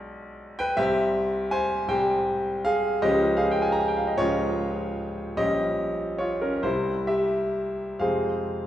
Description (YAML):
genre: classical, romantic nocturne for solo piano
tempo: 42-55 BPM (dotted quarters)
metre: 12/8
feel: rubato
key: unclear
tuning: A4 = 441 Hz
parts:
  - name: clear grand piano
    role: solo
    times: 0.0-8.7 s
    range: Bb1 to B5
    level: -23 LUFS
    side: equal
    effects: none
room: wet recital hall reverb, RT60 1.4 s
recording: heard from further back in the room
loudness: -23 LUFS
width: side -12 dB against mid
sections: 0.0-8.7 A section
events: none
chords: 0.0 Bdim7; 0.8 C; 3.0 Db; 5.4 Gm7b5/Bb; 6.7 C; 8.0 Fm